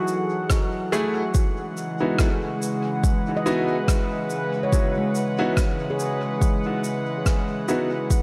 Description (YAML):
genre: ambient dub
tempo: 71 BPM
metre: 4/4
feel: swing 56% on 16ths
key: unclear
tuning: A4 = 440 Hz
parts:
  - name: warbly tape-like pad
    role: sustained chords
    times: 0.0-8.2 s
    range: C#3 to F#5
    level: -28 LUFS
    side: equal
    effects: chorus, built-in reverb
  - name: handpan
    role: arpeggios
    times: 0.0-8.2 s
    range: G#3 to D#5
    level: -33 LUFS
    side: equal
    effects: dub echo
  - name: shaker and rim click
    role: drums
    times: 0.1-8.2 s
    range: none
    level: -35 LUFS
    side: equal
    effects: dub echo
  - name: electronic kick drum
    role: drums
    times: 0.5-8.2 s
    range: none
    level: -24 LUFS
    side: equal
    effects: overdrive
  - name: warm upright piano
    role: stabs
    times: 0.9-7.9 s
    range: A3 to G#4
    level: -30 LUFS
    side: equal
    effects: dub echo
room: moderate huge ambient reverb, RT60 4.0 s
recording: none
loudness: -24 LUFS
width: mono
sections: 0.0-8.2 A section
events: none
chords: 0.0 F#m9; 1.3 C#m11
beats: 0.50 | 1.35 2.19 3.04 3.88 | 4.73 5.57 6.42 7.26 | 8.11